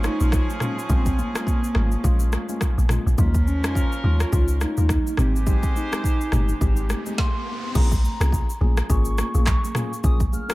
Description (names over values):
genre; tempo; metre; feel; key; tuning
afrobeats; 105 BPM; 4/4; swing 58% on 16ths; unclear; A4 = 441 Hz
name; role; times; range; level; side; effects
hollow clarinet-like synth lead; melody; 0.0-10.5 s; Bb3 to F6; -29 LUFS; equal; chorus, tape echo
warm horn section; second line; 0.0-6.9 s; F3 to C5; -33 LUFS; right 1 dB; tape echo
mellow tine electric piano; accompaniment; 0.0-10.5 s; Ab3 to Ab4; -32 LUFS; left 4 dB; tape echo
deep log drum bass; bass; 0.0-10.4 s; G1 to F2; -20 LUFS; equal; none
afro-pop drum kit; drums; 0.0-10.5 s; crash cymbal, handclaps, kick drum, rim click, shaker, snare drum, toms; -23 LUFS; equal; none
congas; percussion; 0.0-10.5 s; none; -36 LUFS; right 6 dB; tape echo
riser; sound effects; 6.7-7.8 s; none; -37 LUFS; equal; none
room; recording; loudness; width
little or no reverb; echo-heavy mix; -19 LUFS; side -19 dB against mid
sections
0.0-7.8 A section; 7.8-10.5 B section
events
riser 6.7-7.8; stop 7.2-7.8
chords
0.0 Bbm7; 3.2 Eb9sus4; 5.2 Abmaj7; 7.8 Bbm7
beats
0.32 | 0.90 1.47 2.04 2.61 | 3.18 3.75 4.32 4.90 | 5.47 6.04 6.61 7.18 | 7.75 8.32 8.90 9.47 | 10.04